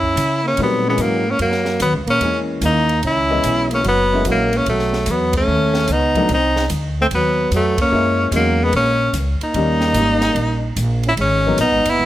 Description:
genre	jazz, small-group swing and bop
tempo	147 BPM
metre	4/4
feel	swing 67% on 8ths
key	F# mixolydian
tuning	A4 = 440 Hz
part	bright tenor saxophone	melody	0.0-12.1 s	A3 to E4	-18 LUFS	left 1 dB	plate reverb
part	mellow trombone	second line	0.0-12.1 s	F#3 to C#4	-23 LUFS	right 3 dB	none
part	upright bass	bass	0.0-12.1 s	F#1 to C#3	-21 LUFS	equal	none
part	open jazz drum kit	drums	0.0-11.9 s	hi-hat, kick drum, ride cymbal, snare drum	-29 LUFS	right 1 dB	none
part	warm upright piano	accompaniment	0.6-11.6 s	D#3 to D#5	-23 LUFS	left 3 dB	none
room	moderate studio reverb, RT60 0.8 s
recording	none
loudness	-15 LUFS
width	side -14 dB against mid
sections	0.0-12.1 A section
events	band accent 5.3, 7.7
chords	0.0 F#7; 3.0 C#m7; 3.8 F#7; 4.7 B7; 6.3 Cdim; 7.9 F#7; 9.5 D#7; 11.2 G#m7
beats	0.17 0.58 0.99 | 1.39 1.80 2.21 2.62 | 3.02 3.43 3.84 4.25 | 4.66 5.06 5.47 5.88 | 6.29 6.69 7.10 7.51 | 7.92 8.32 8.73 9.14 | 9.54 9.95 10.36 10.77 | 11.18 11.58 11.99

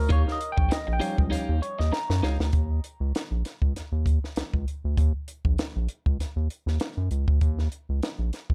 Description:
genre	funk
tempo	98 BPM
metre	4/4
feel	swing 56% on 16ths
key	Eb mixolydian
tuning	A4 = 441 Hz
part	barky tine electric piano	stabs	0.0-2.5 s	F3 to Bb5	-34 LUFS	equal	overdrive, phaser, tape echo, plate reverb
part	round analog bass	bass	0.0-8.5 s	Bb1 to Gb2	-28 LUFS	equal	none
part	clean electric guitar	accompaniment	0.1-2.4 s	Eb4 to F5	-36 LUFS	equal	none
part	compact cocktail drum kit	drums	0.1-8.5 s	hi-hat, kick drum, snare drum	-29 LUFS	equal	none
room	little or no reverb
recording	dark, warm production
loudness	-27 LUFS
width	mono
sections	0.0-2.5 A section; 2.5-8.5 B section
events	tine electric piano solo 0.0-2.5; drum fill 1.9-2.5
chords	0.0 Eb9; 2.5 Eb5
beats	| 0.10 0.71 1.32 1.93 | 2.54 3.15 3.76 4.37 | 4.98 5.59 6.20 6.81 | 7.42 8.03

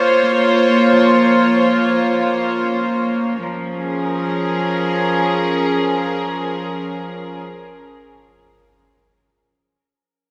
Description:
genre	ambient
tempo	74 BPM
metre	4/4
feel	straight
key	unclear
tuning	A4 = 440 Hz
part	warm studio string section	sustained chords	0.0-7.4 s	F3 to Db5	-17 LUFS	equal	none
part	clean electric guitar	arpeggios	0.9-8.0 s	F3 to Bb4	-36 LUFS	equal	none
room	wet lush hall reverb, RT60 2.6 s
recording	dreamy mix soaked in reverb, cassette tape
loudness	-17 LUFS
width	mono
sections	0.0-3.4 A section; 3.4-6.6 B section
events	none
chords	0.0 Dbmaj7; 3.4 Bbm7/F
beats	| 0.15 0.96 1.77 2.60 | 3.42 4.23 5.03 5.83

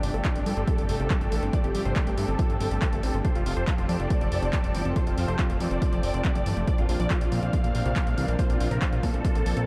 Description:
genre	uplifting trance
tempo	140 BPM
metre	4/4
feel	straight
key	F major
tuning	A4 = 441 Hz
part	big supersaw lead	melody	0.0-9.7 s	D4 to F5	-35 LUFS	equal	phaser, sidechain pumping, low-pass filter, analog delay
part	lush unison pad	sustained chords	0.0-9.7 s	F3 to A4	-37 LUFS	equal	chorus, sidechain pumping
part	unison pluck	arpeggios	0.0-9.6 s	F2 to F4	-37 LUFS	equal	sidechain pumping, diffuse ambient delay
part	fat analog bass	bass	0.0-9.6 s	F1 to Bb2	-31 LUFS	equal	sidechain pumping
part	punchy analog drum machine	drums	0.0-9.7 s	handclaps, hi-hat	-39 LUFS	equal	none
part	electronic kick drum	drums	0.2-9.3 s	none	-28 LUFS	equal	none
room	moderate huge ambient reverb, RT60 7.6 s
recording	dreamy mix soaked in reverb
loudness	-26 LUFS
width	mono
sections	0.0-9.7 A section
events	none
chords	0.0 Gsus2; 3.2 Fadd9; 6.7 Bbadd9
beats	0.25 0.68 1.10 | 1.53 1.96 2.39 2.82 | 3.25 3.68 4.10 4.53 | 4.96 5.39 5.82 6.25 | 6.68 7.10 7.53 7.96 | 8.39 8.82 9.25

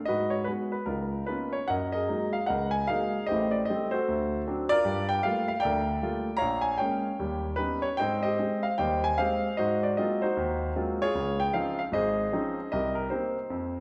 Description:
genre	solo jazz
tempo	152 BPM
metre	4/4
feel	swing 64% on 8ths, rubato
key	unclear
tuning	A4 = 440 Hz
part	warm grand piano	solo	0.1-13.8 s	Ab1 to Bb5	-28 LUFS	equal	none
room	wet recital hall reverb, RT60 1.4 s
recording	recorded in a church or concert hall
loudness	-29 LUFS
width	mono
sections	0.0-1.7 A section; 1.7-13.8 B section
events	none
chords	0.1 Abm7; 0.9 Db13; 1.7 Gb69; 3.3 Am7b5; 4.1 D7; 4.8 Gm9; 6.4 Bbm7; 7.2 Ebaug7; 8.0 Abmaj7; 9.6 Ab13; 11.2 Dbmaj9; 12.7 Cm7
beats	| 0.08 0.47 0.87 1.28 | 1.69 2.09 2.49 2.89 | 3.28 3.67 4.07 4.46 | 4.84 5.23 5.62 6.00 | 6.39 6.79 7.18 7.58 | 7.99 8.39 8.79 9.19 | 9.59 9.98 10.38 10.77 | 11.15 11.54 11.93 12.32 | 12.71 13.10 13.50

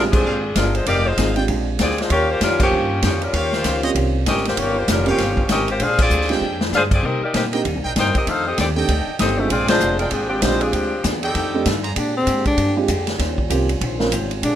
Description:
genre	jazz, big band swing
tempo	195 BPM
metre	4/4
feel	swing 61% on 8ths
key	Bb mixolydian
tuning	A4 = 441 Hz
part	warm saxophone section	melody	0.0-11.8 s	F3 to G5	-20 LUFS	left 2 dB	plate reverb
part	vintage hollow-body jazz guitar	accompaniment	0.0-14.6 s	F2 to C5	-29 LUFS	left 4 dB	plate reverb
part	warm upright piano	accompaniment	0.0-14.1 s	Ab3 to C5	-23 LUFS	right 5 dB	plate reverb
part	upright bass	bass	0.0-14.6 s	F1 to C3	-24 LUFS	equal	none
part	swinging big-band drum kit	drums	0.1-14.5 s	crash cymbal, hi-hat, kick drum, ride cymbal, snare drum	-23 LUFS	equal	none
part	brilliant trumpet section	stabs	0.2-11.9 s	Bb3 to Bb5	-28 LUFS	right 2 dB	none
part	breathy tenor saxophone	melody	12.0-14.6 s	C4 to D4	-20 LUFS	left 1 dB	plate reverb
part	mellow trombone section	sustained chords	12.0-14.6 s	D3 to Ab4	-30 LUFS	equal	plate reverb
room	moderate small room reverb, RT60 0.5 s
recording	rough home demo mix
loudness	-17 LUFS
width	side -11 dB against mid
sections	0.0-12.0 A section; 12.0-14.6 B section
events	band accent 0.1, 2.6, 6.0, 9.7; drum fill 6.4-6.7; tenor saxophone solo 12.0-14.6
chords	0.0 Bb13; 0.9 Fm7; 1.5 Bb13; 2.1 Eb13; 5.8 Bb13; 7.0 Cm7; 8.3 F13; 9.5 Bb13; 11.3 F13; 12.0 Bb13; 13.2 Eb13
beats	0.25 0.56 | 0.87 1.18 1.48 1.79 | 2.10 2.41 2.72 3.03 | 3.33 3.64 3.95 4.26 | 4.57 4.88 5.18 5.49 | 5.80 6.11 6.42 6.72 | 7.03 7.34 7.65 7.96 | 8.27 8.57 8.88 9.19 | 9.50 9.80 10.11 10.42 | 10.73 11.04 11.35 11.65 | 11.96 12.27 12.58 12.88 | 13.19 13.50 13.81 14.12 | 14.42

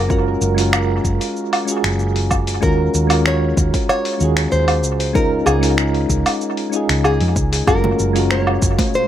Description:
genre	sunset chillout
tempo	95 BPM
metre	4/4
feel	straight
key	Gb major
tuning	A4 = 439 Hz
part	nylon-string guitar	melody	0.0-9.1 s	Ab4 to Db5	-22 LUFS	left 1 dB	analog delay
part	soft electric-piano-like synth keys	accompaniment	0.0-9.1 s	Ab3 to Bb4	-20 LUFS	right 1 dB	chorus, auto-pan, analog delay
part	hollow-body short-scale fingered electric bass	bass	0.0-8.8 s	Gb1 to F2	-19 LUFS	equal	none
part	dusty soul sampler-style drum kit	drums	0.1-9.1 s	finger snaps, hi-hat, shaker, woodblock	-22 LUFS	right 1 dB	tape echo
part	electronic kick drum	drums	0.1-8.9 s	none	-20 LUFS	equal	overdrive
part	ethereal airy pad	sustained chords	8.4-9.1 s	Bb2 to F5	-32 LUFS	left 1 dB	none
part	congas	percussion	7.8-8.9 s	none	-26 LUFS	right 2 dB	none
room	moderate spring reverb, RT60 1.6 s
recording	echo-heavy mix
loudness	-15 LUFS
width	side -11 dB against mid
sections	0.0-9.1 A section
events	none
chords	0.0 Gbmaj9; 2.6 Ebm11; 5.2 Db6; 7.7 Gbmaj9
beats	| 0.10 0.73 1.36 1.99 | 2.63 3.26 3.89 4.52 | 5.15 5.78 6.42 7.05 | 7.68 8.31 8.94

